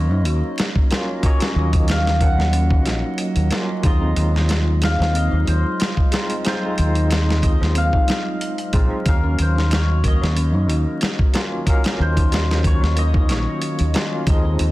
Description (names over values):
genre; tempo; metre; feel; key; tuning
trip hop; 92 BPM; 4/4; swing 54% on 16ths; Eb dorian; A4 = 440 Hz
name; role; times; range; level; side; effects
cimbalom; melody; 0.0-14.7 s; Bb4 to Gb5; -28 LUFS; left 1 dB; dub echo
barky tine electric piano; accompaniment; 0.0-14.7 s; F3 to F5; -27 LUFS; equal; tremolo, vintage 12-bit sampler grit, tape echo
warbly tape-like pad; sustained chords; 0.0-14.7 s; Eb3 to Eb5; -30 LUFS; right 2 dB; chorus, built-in reverb
dark detuned synth bell; arpeggios; 0.0-14.7 s; C4 to Db5; -30 LUFS; equal; chorus, dub echo
deep dub fingered electric bass; bass; 0.0-14.7 s; Bb1 to Gb2; -18 LUFS; equal; none
dusty soul sampler-style drum kit; drums; 0.3-14.7 s; hi-hat, kick drum, snare drum; -20 LUFS; equal; studio reverb
room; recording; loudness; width
little or no reverb; dense, heavily limited modern master, vinyl crackle; -16 LUFS; side -18 dB against mid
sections
0.0-14.7 A section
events
none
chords
0.0 Ebm7; 3.8 Fm7/Eb; 9.1 Ebm7